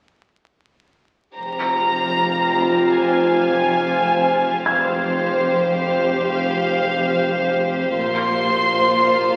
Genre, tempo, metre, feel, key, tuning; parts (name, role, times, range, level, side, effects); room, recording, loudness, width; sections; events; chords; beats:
cinematic, suspense film score; 73 BPM; 4/4; straight; F minor; A4 = 439 Hz
warm chamber violin section; melody; 1.4-9.4 s; C5 to C6; -23 LUFS; equal
dark studio violin section; second line; 1.4-9.4 s; F4 to C5; -29 LUFS; equal
icy glass pad; sustained chords; 1.8-9.4 s; F4 to F5; -23 LUFS; equal; chorus, built-in reverb
dark chamber cello section; bass; 1.4-9.4 s; F2 to Bb2; -29 LUFS; equal
warm chamber double bass section; bass; 1.4-9.4 s; F1 to Bb1; -36 LUFS; equal
sub bass with octave; drone; 1.4-9.4 s; F1; -41 LUFS; equal
dark grand piano; texture; 2.6-8.0 s; Bb5 to Ab6; -30 LUFS; equal
wet scoring stage reverb, RT60 1.6 s; very old 78 rpm record, vinyl crackle; -19 LUFS; mono
1.4-9.4 A section
1.4 Fmadd9; 8.0 Bbsus2/F
| 1.38 2.20 3.02 3.84 | 4.66 5.49 6.31 7.13 | 7.95 8.77